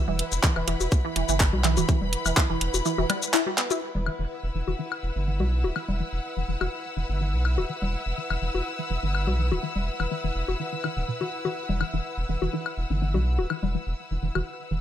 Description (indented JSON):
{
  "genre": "minimal techno",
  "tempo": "124 BPM",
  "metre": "4/4",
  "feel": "straight",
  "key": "unclear",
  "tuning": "A4 = 439 Hz",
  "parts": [
    { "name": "flickering grainy texture", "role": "texture", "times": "0.0-3.8 s", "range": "B4", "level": "-38 LUFS", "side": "right 3 dB", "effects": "built-in reverb, sidechain pumping" },
    { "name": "rich studio string section", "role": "texture", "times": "0.0-14.8 s", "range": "E4 to E6", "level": "-33 LUFS", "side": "left 2 dB", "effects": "sidechain pumping" },
    { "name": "resonant blip pluck", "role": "riff", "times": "0.1-14.8 s", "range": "B2 to E4", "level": "-30 LUFS", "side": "right 1 dB", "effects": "phaser, analog chorus, sidechain pumping, dub echo" },
    { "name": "round analog bass", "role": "bass", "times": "0.1-14.8 s", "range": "D1 to B1", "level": "-27 LUFS", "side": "equal", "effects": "sidechain pumping" },
    { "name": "congas, woodblock and bongos", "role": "percussion", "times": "0.1-14.4 s", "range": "none", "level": "-31 LUFS", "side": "left 4 dB", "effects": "small room ambience, digital delay" },
    { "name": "garage drum kit", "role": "drums", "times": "0.2-3.8 s", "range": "handclaps, hi-hat, shaker", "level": "-26 LUFS", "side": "equal", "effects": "overdrive, small room ambience" },
    { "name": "electronic kick drum", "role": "drums", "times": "0.4-2.5 s", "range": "none", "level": "-22 LUFS", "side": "equal", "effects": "overdrive, small room ambience" }
  ],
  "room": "digital ambience",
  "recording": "none",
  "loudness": "-24 LUFS",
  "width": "side -10 dB against mid",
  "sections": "0.0-3.8 A section; 3.8-14.8 B section",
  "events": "drop 0.0-3.8; kick drops out 2.9-3.8",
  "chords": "0.0 E5"
}